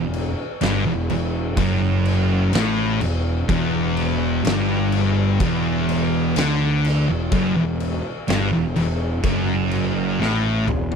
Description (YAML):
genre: stoner and doom metal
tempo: 63 BPM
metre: 4/4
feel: straight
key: E minor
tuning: A4 = 440 Hz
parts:
  - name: thick fuzz guitar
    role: riff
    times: 0.0-11.0 s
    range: E2 to D3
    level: -23 LUFS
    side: left 8 dB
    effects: distortion
  - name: thick fuzz guitar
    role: riff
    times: 0.0-11.0 s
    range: E2 to D3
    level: -23 LUFS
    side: right 7 dB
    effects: distortion
  - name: fuzz picked electric bass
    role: bass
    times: 0.0-11.0 s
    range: E1 to D2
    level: -26 LUFS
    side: equal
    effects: overdrive
  - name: oversized low-tuned drum kit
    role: drums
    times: 0.1-11.0 s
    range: crash cymbal, kick drum, snare drum, toms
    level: -26 LUFS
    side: equal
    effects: none
room: little or no reverb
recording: none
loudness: -18 LUFS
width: side -6 dB against mid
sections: 0.0-11.0 A section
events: drum fill 10.2-11.0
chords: 0.0 Em